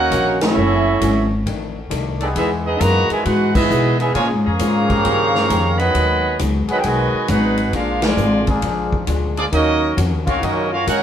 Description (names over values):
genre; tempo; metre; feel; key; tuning
jazz, big band swing; 134 BPM; 4/4; swing 66% on 8ths; Eb minor; A4 = 442 Hz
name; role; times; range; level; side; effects
brilliant trumpet section; melody; 0.0-11.0 s; Bb3 to Cb6; -20 LUFS; equal; none
brilliant trombone section; second line; 0.0-11.0 s; B2 to Gb4; -21 LUFS; right 3 dB; none
upright bass; bass; 0.0-11.0 s; Gb1 to B2; -20 LUFS; left 1 dB; none
hollow-body jazz guitar; accompaniment; 0.1-11.0 s; F2 to G4; -26 LUFS; left 6 dB; none
swinging big-band drum kit; drums; 0.1-11.0 s; crash cymbal, hi-hat, kick drum, ride cymbal, snare drum; -25 LUFS; equal; none
muted trombone section; sustained chords; 2.2-10.8 s; Eb3 to Ab4; -26 LUFS; left 2 dB; none
room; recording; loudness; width
moderate stone room reverb, RT60 0.9 s; band playing live in one room; -15 LUFS; side -9 dB against mid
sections
0.0-11.0 A section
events
band accent 0.3, 3.5, 8.0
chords
0.0 Ebm7; 0.6 Gbm7; 1.5 F13; 2.4 Emaj7; 4.2 Bbm7; 5.1 Eb7; 5.9 Abm7; 7.7 Bb7; 9.5 Ebm7